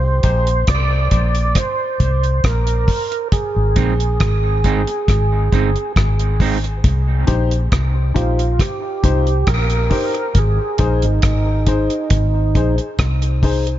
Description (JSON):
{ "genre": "dub reggae", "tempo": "68 BPM", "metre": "4/4", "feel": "straight", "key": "C minor", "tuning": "A4 = 440 Hz", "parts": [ { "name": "mellow tonewheel organ", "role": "melody", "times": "0.0-12.8 s", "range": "Eb4 to D5", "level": "-22 LUFS", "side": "right 3 dB", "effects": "overdrive, chorus vibrato, slow rotary speaker, dub echo" }, { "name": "vintage muted fingered electric bass", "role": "bass", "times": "0.0-13.8 s", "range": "G1 to C2", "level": "-17 LUFS", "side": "equal", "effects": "none" }, { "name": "dark upright piano", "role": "stabs", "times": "0.2-13.8 s", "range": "Eb4 to C5", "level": "-24 LUFS", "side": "left 5 dB", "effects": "high-pass filter, dub echo" }, { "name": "deep reggae drum kit", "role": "drums", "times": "0.2-13.8 s", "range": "hi-hat, kick drum, rim click", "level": "-19 LUFS", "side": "equal", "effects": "none" }, { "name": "electric guitar at the edge of break-up", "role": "accompaniment", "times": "3.8-6.7 s", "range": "Ab3 to Eb4", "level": "-25 LUFS", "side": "right 8 dB", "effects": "dub echo" } ], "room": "studio reverb", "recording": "echo-heavy mix, nothing above 7.6 kHz", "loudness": "-14 LUFS", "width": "side -13 dB against mid", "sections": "0.0-13.8 A section", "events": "break 0.0-3.3", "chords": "0.0 Cm; 3.3 Ab; 6.8 Cm; 10.4 Ab" }